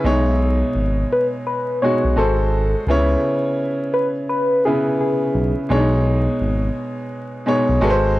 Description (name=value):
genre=lo-fi hip hop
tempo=85 BPM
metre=4/4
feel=swing 66% on 16ths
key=B major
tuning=A4 = 441 Hz
part: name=clear upright piano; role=accompaniment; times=0.0-8.2 s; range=B2 to C#5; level=-19 LUFS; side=equal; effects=cassette tape
part: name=smooth synth bass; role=bass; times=0.0-8.2 s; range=G#1 to C#2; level=-19 LUFS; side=equal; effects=transformer saturation
part: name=soft struck synth lead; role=melody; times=1.1-5.5 s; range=G#4 to C#5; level=-22 LUFS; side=left 1 dB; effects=chorus, tape echo
room=light reverb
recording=dry, gritty hardware recording, vinyl crackle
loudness=-16 LUFS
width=side -17 dB against mid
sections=0.0-8.2 A section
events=none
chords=0.0 B69; 2.2 G#7b9; 2.9 C#m7; 5.7 B69